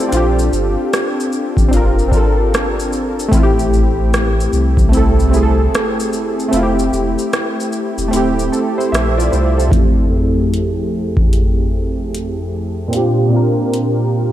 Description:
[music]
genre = lo-fi hip hop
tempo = 75 BPM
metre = 4/4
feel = swing 64% on 16ths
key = F major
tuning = A4 = 440 Hz
[part]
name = warm analog keys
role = accompaniment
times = 0.0-14.3 s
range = F2 to E5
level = -16 LUFS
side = equal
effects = chorus, low-pass filter
[part]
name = warm sub bass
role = bass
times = 0.1-9.7 s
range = D1 to C2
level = -17 LUFS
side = equal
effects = none
[part]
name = booming analog drum machine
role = drums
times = 0.1-14.0 s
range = hi-hat, kick drum, rim click, shaker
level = -17 LUFS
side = equal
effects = none
[sound]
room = light reverb, digital ambience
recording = none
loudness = -13 LUFS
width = side -12 dB against mid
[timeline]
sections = 0.0-9.7 A section; 9.7-14.3 B section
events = kick muted 8.1-9.7; filter sweep on synth keys 9.7-14.3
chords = 0.1 Bb69; 3.3 Am7; 6.5 Fmaj9; 9.7 Fmaj7; 12.9 Bb69

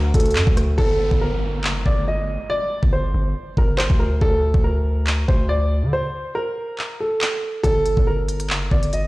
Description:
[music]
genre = hip hop, drill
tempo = 140 BPM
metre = 4/4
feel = half-time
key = G harmonic minor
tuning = A4 = 440 Hz
[part]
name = dark grand piano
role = melody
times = 0.0-9.1 s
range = A4 to Eb5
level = -23 LUFS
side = right 1 dB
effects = none
[part]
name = warm symphonic string section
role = sustained chords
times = 0.0-0.8 s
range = D3 to F#4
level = -34 LUFS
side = left 1 dB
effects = none
[part]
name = hard-hitting 808-style bass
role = bass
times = 0.0-9.1 s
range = F#1 to D3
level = -21 LUFS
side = equal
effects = none
[part]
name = drill drum kit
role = drums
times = 0.1-9.0 s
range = handclaps, hi-hat, kick drum, rim click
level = -20 LUFS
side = equal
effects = vintage 12-bit sampler grit
[part]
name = downlifter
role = sound effects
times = 0.8-4.2 s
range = none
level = -33 LUFS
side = equal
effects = none
[sound]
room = digital ambience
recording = played on a big sound system in a bare room, stone room reverb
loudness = -18 LUFS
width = side -20 dB against mid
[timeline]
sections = 0.8-9.1 A section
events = break 0.8-7.6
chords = 0.0 D; 0.8 Gm; 4.2 D5; 7.6 Gm

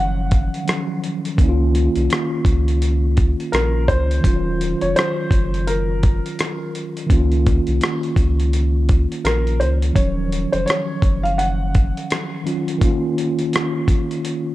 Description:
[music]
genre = lo-fi hip hop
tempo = 84 BPM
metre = 4/4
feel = swing 61% on 16ths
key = Eb dorian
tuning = A4 = 440 Hz
[part]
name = felt-muted upright piano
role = melody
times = 0.0-12.4 s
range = Bb4 to Gb5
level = -24 LUFS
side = equal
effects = low-pass filter
[part]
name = mellow tine electric piano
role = accompaniment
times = 0.0-14.5 s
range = Eb3 to F4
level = -22 LUFS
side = equal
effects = medium stereo tremolo, low-pass filter
[part]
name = saturated sub bass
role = bass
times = 0.0-11.9 s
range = Eb1 to Db2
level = -19 LUFS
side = equal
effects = none
[part]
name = dusty soul sampler-style drum kit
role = drums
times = 0.3-14.4 s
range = hi-hat, kick drum, rim click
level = -20 LUFS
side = equal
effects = none
[sound]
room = light reverb, digital ambience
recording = dark, warm production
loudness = -16 LUFS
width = side -16 dB against mid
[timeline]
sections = 0.0-14.5 A section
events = none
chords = 0.0 Ebm9; 1.4 Db69; 4.2 Ebm9; 7.1 Db69; 10.0 Ebm9; 12.8 Db69

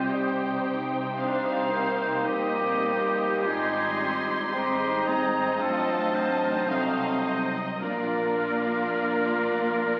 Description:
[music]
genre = classical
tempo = 48-57 BPM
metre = 4/4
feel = rubato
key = unclear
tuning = A4 = 441 Hz
[part]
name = rich symphonic violin section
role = melody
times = 0.0-10.0 s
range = D5 to C6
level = -36 LUFS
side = equal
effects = none
[part]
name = clear oboe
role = second line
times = 0.0-10.0 s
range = G4 to C5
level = -34 LUFS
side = equal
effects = none
[part]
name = flute section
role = second line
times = 0.0-10.0 s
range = Eb6 to Ab6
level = -40 LUFS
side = equal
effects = none
[part]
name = rich symphonic violin section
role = second line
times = 0.0-10.0 s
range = Eb4 to Eb5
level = -35 LUFS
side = equal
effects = none
[part]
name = warm clarinet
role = second line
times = 0.0-10.0 s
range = C4 to G4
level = -35 LUFS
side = equal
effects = none
[part]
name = rich symphonic viola section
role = accompaniment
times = 0.0-10.0 s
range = G3 to F4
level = -36 LUFS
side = equal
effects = none
[part]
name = warm bassoon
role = accompaniment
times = 0.0-10.0 s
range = G3 to C4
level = -32 LUFS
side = equal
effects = none
[part]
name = mellow French horn section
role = sustained chords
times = 0.0-10.0 s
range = F3 to C4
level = -39 LUFS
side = equal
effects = none
[part]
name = dark symphonic double bass section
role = bass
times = 0.0-10.0 s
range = Ab1 to C2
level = -45 LUFS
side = equal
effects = none
[part]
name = warm symphonic cello section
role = bass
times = 0.0-10.0 s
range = Ab2 to C3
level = -41 LUFS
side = equal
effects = none
[sound]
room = wet recital hall reverb, RT60 1.5 s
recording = very old 78 rpm record, vinyl crackle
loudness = -26 LUFS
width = mono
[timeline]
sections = 0.0-10.0 A section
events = none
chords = 0.0 Cm; 3.5 Abmaj7; 5.6 Adim7; 7.8 Bb

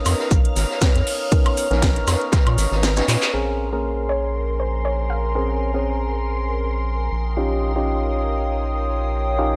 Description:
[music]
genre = deep house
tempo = 119 BPM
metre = 4/4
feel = swing 55% on 16ths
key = Bb dorian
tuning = A4 = 440 Hz
[part]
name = dark analog pad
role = sustained chords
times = 0.0-9.6 s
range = C#5 to Eb6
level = -31 LUFS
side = equal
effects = lush chorus, sidechain pumping
[part]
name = percussive organ stab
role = stabs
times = 0.0-9.6 s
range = Bb3 to C#5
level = -28 LUFS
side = equal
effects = lush chorus, sidechain pumping, analog delay
[part]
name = soft string machine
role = texture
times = 0.0-9.6 s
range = Bb4 to F6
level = -36 LUFS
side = equal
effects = ensemble chorus
[part]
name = round analog bass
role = bass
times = 0.1-9.6 s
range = Ab1 to A#2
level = -25 LUFS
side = equal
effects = sidechain pumping
[part]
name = house drum kit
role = drums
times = 0.1-3.3 s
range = handclaps, hi-hat, snare drum, woodblock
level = -28 LUFS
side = equal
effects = none
[part]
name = raw garage drum kit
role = drums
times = 0.1-3.3 s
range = hi-hat, shaker, snare drum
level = -29 LUFS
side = equal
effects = high-pass filter on hats, high-pass filter on snare, high-pass filter on perc, high-pass filter on room
[part]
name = electronic kick drum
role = drums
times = 0.3-2.4 s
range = none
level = -20 LUFS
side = equal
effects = none
[part]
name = soft round pluck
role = melody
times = 4.1-5.8 s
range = C5 to F5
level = -30 LUFS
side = equal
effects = lush chorus
[sound]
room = light reverb, small room reverb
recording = dry, gritty hardware recording, transformer saturation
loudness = -21 LUFS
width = mono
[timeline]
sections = 0.0-3.3 A section; 3.3-9.6 B section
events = kick drops out 2.8-3.3; drum fill 3.1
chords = 0.0 Bmaj9; 3.3 Bbm9; 7.1 Eb9/Bb

